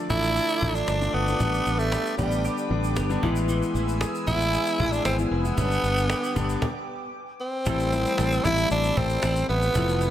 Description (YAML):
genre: 1980s-style pop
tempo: 115 BPM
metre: 4/4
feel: straight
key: A minor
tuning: A4 = 443 Hz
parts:
  - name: warm concert grand piano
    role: accompaniment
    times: 0.0-10.1 s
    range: C3 to E4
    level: -29 LUFS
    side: left 4 dB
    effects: none
  - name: glassy FM pad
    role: sustained chords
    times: 0.0-6.6 s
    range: A4 to E6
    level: -35 LUFS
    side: left 1 dB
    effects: ensemble chorus, built-in reverb
  - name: clean electric guitar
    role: riff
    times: 0.0-10.1 s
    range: E3 to A4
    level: -34 LUFS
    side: right 4 dB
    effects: analog chorus, tape echo
  - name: growling tenor saxophone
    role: melody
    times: 0.1-10.1 s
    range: G3 to E4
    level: -26 LUFS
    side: right 1 dB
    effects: none
  - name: fingered electric bass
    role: bass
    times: 0.1-10.1 s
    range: F1 to A1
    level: -27 LUFS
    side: equal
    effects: none
  - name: cajon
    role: drums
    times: 0.1-10.1 s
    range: none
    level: -30 LUFS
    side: equal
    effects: none
  - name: tube shaker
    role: percussion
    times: 0.1-10.1 s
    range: none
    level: -43 LUFS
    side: left 6 dB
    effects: none
room: light reverb, small room ambience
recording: none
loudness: -22 LUFS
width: side -11 dB against mid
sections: 0.0-7.7 A section; 7.7-10.1 B section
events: stop 6.6-7.7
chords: 0.0 Dm/A; 1.4 G/A; 3.2 E/A; 5.6 G; 7.7 Am7